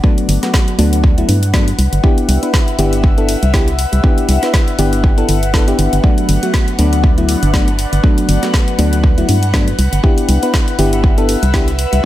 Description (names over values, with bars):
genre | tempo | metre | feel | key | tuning
deep house | 120 BPM | 4/4 | swing 56% on 16ths | unclear | A4 = 442 Hz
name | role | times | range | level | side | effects
mellow FM electric piano | stabs | 0.0-11.7 s | F#3 to B4 | -18 LUFS | left 1 dB | chorus, sidechain pumping, tape echo
electronic kick drum | drums | 0.0-11.6 s | none | -13 LUFS | equal | studio reverb
airy breathy pad | texture | 0.0-12.1 s | D4 to F#5 | -22 LUFS | left 2 dB | chorus, phaser, sidechain pumping
deep house drum kit | drums | 0.2-12.0 s | hi-hat, snare drum | -22 LUFS | left 1 dB | studio reverb, dub echo
organ-like FM bass | bass | 0.3-12.0 s | G1 to G2 | -14 LUFS | equal | sidechain pumping
room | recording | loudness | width
digital ambience | echo-heavy mix | -11 LUFS | side -14 dB against mid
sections
0.0-12.1 A section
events
none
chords
0.0 Gmaj7; 1.8 Cmaj7; 6.0 Gmaj7; 9.8 Cmaj7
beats
| 0.04 0.54 1.04 1.54 | 2.04 2.54 3.04 3.54 | 4.04 4.54 5.04 5.54 | 6.04 6.54 7.04 7.54 | 8.04 8.54 9.04 9.54 | 10.04 10.54 11.04 11.54 | 12.04